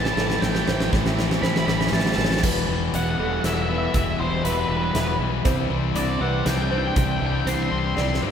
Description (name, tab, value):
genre	post-rock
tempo	119 BPM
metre	3/4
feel	straight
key	E minor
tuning	A4 = 439 Hz
part	octave-fuzz lead guitar	melody	0.0-8.2 s	B4 to C6	-28 LUFS	right 1 dB	distortion
part	clear symphonic string section	sustained chords	0.0-8.3 s	E3 to G4	-36 LUFS	right 1 dB	none
part	semi-hollow electric guitar	arpeggios	0.0-8.3 s	A2 to E4	-30 LUFS	left 2 dB	spring reverb
part	crunchy overdriven guitar	riff	0.0-8.3 s	E2 to C4	-28 LUFS	left 7 dB	none
part	distorted electric guitar	riff	0.0-2.4 s	A2 to E3	-31 LUFS	right 8 dB	overdrive
part	fuzz fingered electric bass	bass	0.0-8.3 s	E1 to G2	-26 LUFS	equal	overdrive
part	huge arena drum kit	drums	0.1-8.3 s	crash cymbal, hi-hat, kick drum, snare drum	-26 LUFS	right 1 dB	none
part	felt-muted upright piano	arpeggios	0.2-8.3 s	A4 to E5	-32 LUFS	right 2 dB	none
room	wet church reverb, RT60 3.6 s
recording	recorded in a church or concert hall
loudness	-20 LUFS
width	side -8 dB against mid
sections	0.0-2.4 A section; 2.4-8.3 B section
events	build-up 0.0-2.4; drum fill 0.0-2.4, 8.0-8.3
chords	0.0 Am7; 2.4 Em; 5.5 Cadd9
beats	0.42 | 0.93 1.43 1.93 | 2.43 2.94 3.44 | 3.94 4.45 4.95 | 5.45 5.96 6.46 | 6.96 7.47 7.97